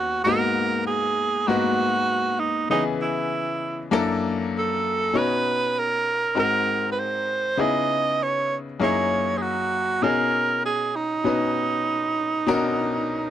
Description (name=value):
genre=soul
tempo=98 BPM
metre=4/4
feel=swing 58% on 16ths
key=B major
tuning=A4 = 442 Hz
part: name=breathy tenor saxophone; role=melody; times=0.0-13.3 s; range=D#4 to D#5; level=-23 LUFS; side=right 4 dB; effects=none
part: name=bright concert grand piano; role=accompaniment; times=0.0-13.3 s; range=D#2 to D#5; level=-25 LUFS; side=left 4 dB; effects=none
room=light reverb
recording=dry, close 1970s-style studio recording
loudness=-21 LUFS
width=side -11 dB against mid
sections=0.0-13.3 A section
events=none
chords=0.3 G#m7; 2.7 C#m9; 3.9 F#7alt; 5.1 Bmaj9; 6.4 G#7; 7.6 C#m9; 8.8 F#13; 10.0 B6